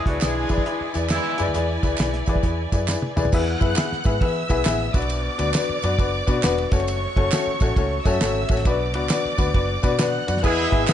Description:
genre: uptempo 1960s-style soul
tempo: 135 BPM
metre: 4/4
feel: swing 64% on 8ths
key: B dorian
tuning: A4 = 440 Hz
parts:
  - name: warm studio violin section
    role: second line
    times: 0.0-10.9 s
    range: E4 to F#6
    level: -29 LUFS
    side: right 1 dB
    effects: slapback echo
  - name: bright upright piano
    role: accompaniment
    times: 0.0-10.9 s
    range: B2 to E5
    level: -24 LUFS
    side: left 5 dB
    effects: none
  - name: clear horn section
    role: second line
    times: 0.1-1.5, 10.4-10.9 s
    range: E3 to G#4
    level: -25 LUFS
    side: right 2 dB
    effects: none
  - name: vintage muted fingered electric bass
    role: bass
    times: 0.1-10.8 s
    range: E1 to E3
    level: -26 LUFS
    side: right 1 dB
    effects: none
  - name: cloth-damped thuddy drum kit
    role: drums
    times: 0.1-10.9 s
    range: crash cymbal, hi-hat, kick drum, ride cymbal, snare drum, toms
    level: -24 LUFS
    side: right 1 dB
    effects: none
  - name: handclaps and tambourine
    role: percussion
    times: 0.2-10.9 s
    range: none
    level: -33 LUFS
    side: right 6 dB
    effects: none
room: light reverb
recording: nothing above 10.4 kHz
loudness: -19 LUFS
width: side -10 dB against mid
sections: 0.0-3.3 A section; 3.3-10.9 B section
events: drum fill 2.9-3.3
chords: 0.0 E7; 3.3 E; 4.9 Bm; 6.7 F#m; 8.7 Bm

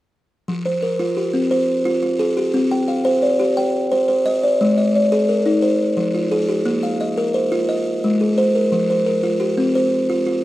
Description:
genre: southern african traditional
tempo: 116 BPM (dotted quarters)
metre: 12/8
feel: straight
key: F equiheptatonic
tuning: A4 = 441 Hz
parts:
  - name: buzzing kalimba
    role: arpeggios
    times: 0.5-10.4 s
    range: F3 to G5-29c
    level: -16 LUFS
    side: equal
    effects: slapback echo
room: little or no reverb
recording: recorded outdoors, with no room sound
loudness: -16 LUFS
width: side -16 dB against mid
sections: 0.5-10.4 A section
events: none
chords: 0.5 Fm; 2.5 Cm; 4.6 Ab5; 5.6 Fm; 6.7 Bb5; 7.7 Ab; 8.7 F5

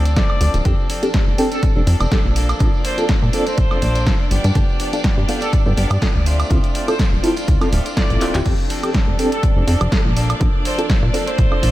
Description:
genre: filtered disco house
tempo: 123 BPM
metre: 4/4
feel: swing 54% on 16ths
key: F major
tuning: A4 = 440 Hz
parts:
  - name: rich symphonic string section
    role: sustained chords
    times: 0.0-11.7 s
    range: D4 to D5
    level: -28 LUFS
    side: equal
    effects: vintage 12-bit sampler grit, sidechain pumping, low-pass filter
  - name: direct-recorded clean electric guitar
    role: riff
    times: 0.0-11.7 s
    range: F3 to A4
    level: -29 LUFS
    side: left 1 dB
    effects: sidechain pumping, low-pass filter
  - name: plucky analog bass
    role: bass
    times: 0.0-11.7 s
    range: D1 to Bb2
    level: -18 LUFS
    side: equal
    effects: sidechain pumping, low-pass filter
  - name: punchy analog drum machine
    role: drums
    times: 0.1-11.7 s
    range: crash cymbal, handclaps, hi-hat, snare drum, woodblock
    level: -25 LUFS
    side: right 1 dB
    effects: sidechain pumping on hats, sidechain pumping on perc, sidechain pumping on cymbals
  - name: tambourine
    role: percussion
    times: 0.1-8.4 s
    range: none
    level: -38 LUFS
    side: right 1 dB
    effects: sidechain pumping on perc, low-pass filter on perc
  - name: bright trumpet section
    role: melody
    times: 0.2-11.7 s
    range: A4 to D5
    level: -28 LUFS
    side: right 1 dB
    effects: sidechain pumping, low-pass filter, tape echo
  - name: mellow reed electric piano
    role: accompaniment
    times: 0.2-11.6 s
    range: B3 to A4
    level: -23 LUFS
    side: equal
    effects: fast tremolo, phaser, sidechain pumping, low-pass filter
  - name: electronic kick drum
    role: drums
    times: 0.2-11.5 s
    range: none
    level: -18 LUFS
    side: equal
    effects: none
room: light reverb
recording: none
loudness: -15 LUFS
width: side -15 dB against mid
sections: 0.0-8.5 A section; 8.5-11.7 B section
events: drum fill 8.2; drop 8.5-11.7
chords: 0.0 Dm7; 0.7 F6; 2.4 Bbmaj7; 4.3 G7; 6.3 Dm7; 8.5 F6; 10.2 Bbmaj7

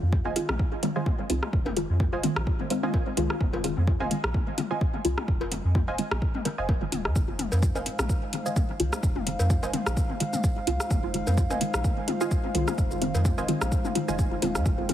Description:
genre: dub techno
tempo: 128 BPM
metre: 4/4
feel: swing 55% on 16ths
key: F minor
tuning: A4 = 441 Hz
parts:
  - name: filtered dub chord stab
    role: stabs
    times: 0.0-14.9 s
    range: Eb3 to F4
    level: -30 LUFS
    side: equal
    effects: phaser, sidechain pumping, dub echo
  - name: soft dub sub bass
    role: bass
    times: 0.0-14.9 s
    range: Eb1 to F2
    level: -29 LUFS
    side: equal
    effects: sidechain pumping
  - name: electronic kick drum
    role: drums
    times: 0.1-14.8 s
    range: none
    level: -26 LUFS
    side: equal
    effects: small room ambience
  - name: filtered dub chord stab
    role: riff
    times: 0.3-14.2 s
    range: C5 to Ab5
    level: -36 LUFS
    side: right 3 dB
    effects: chorus, sidechain pumping, dub echo
  - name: electronic toms and cowbell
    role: percussion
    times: 0.3-14.9 s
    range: none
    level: -36 LUFS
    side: left 4 dB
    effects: overdrive, sidechain pumping on perc, small room ambience, sidechain pumping on toms, dub echo
  - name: deep house drum kit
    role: drums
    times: 0.4-14.9 s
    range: hi-hat, rim click, shaker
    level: -33 LUFS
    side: equal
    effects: small room ambience, dub echo
  - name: dark analog pad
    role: sustained chords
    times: 7.2-14.9 s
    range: Ab3 to G5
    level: -33 LUFS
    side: equal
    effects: chorus, sidechain pumping
room: light reverb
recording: heavily compressed radio sound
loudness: -24 LUFS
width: side -11 dB against mid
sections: 0.0-7.2 A section; 7.2-14.9 A section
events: filter sweep on synth stab 0.0-7.2, 7.2-14.9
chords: 0.0 Fm7

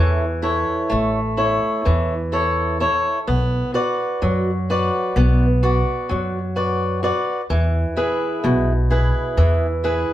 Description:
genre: greek folk, Greek bouzouki band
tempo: 128 BPM (eighths)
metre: 9/8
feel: straight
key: A major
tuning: A4 = 440 Hz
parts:
  - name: fingerpicked swing-style acoustic guitar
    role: accompaniment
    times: 0.0-10.1 s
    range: B2 to D5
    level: -20 LUFS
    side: equal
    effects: none
  - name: upright bass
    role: bass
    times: 0.0-10.0 s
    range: A1 to F#2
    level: -20 LUFS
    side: equal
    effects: none
room: moderate studio reverb, RT60 0.8 s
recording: band playing live in one room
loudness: -17 LUFS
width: side -13 dB against mid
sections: 0.0-10.1 A section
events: none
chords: 0.0 A; 3.3 Bm; 7.5 E

